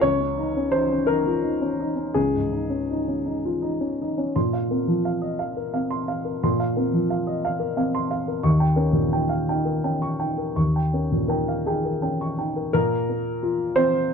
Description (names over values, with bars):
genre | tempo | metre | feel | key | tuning
neoclassical minimalist piano | 54-60 BPM (dotted quarters) | 6/8 | rubato | Bb dorian | A4 = 440 Hz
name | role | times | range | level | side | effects
warm upright piano | solo | 0.0-14.1 s | Db2 to Db6 | -21 LUFS | equal | none
room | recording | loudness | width
moderate studio reverb, RT60 0.8 s | dark, warm production, nothing above 7.7 kHz | -21 LUFS | side -6 dB against mid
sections
0.0-4.4 A section; 4.4-12.7 B section; 12.7-14.1 C section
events
none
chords
0.0 Dbsus2; 4.4 Bbsus2; 8.5 Eb7; 12.7 Bbsus2